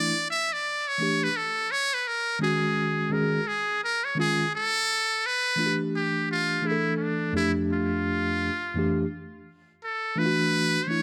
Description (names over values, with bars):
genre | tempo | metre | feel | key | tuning
hip hop | 85 BPM | 4/4 | swing 63% on 16ths | unclear | A4 = 441 Hz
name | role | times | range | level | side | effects
trumpet with metal mute | melody | 0.0-11.0 s | C#4 to E5 | -28 LUFS | equal | none
mellow tine electric piano | accompaniment | 0.0-11.0 s | F2 to A4 | -29 LUFS | equal | none
room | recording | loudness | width
moderate echo chamber reverb, RT60 1.3 s, small room ambience | none | -26 LUFS | mono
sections
0.0-4.9 A section; 4.9-11.0 B section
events
muted trumpet solo 0.0-4.9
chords
0.0 Em11; 2.1 G#7sus4; 4.9 A9sus4; 7.3 F; 10.2 E9sus4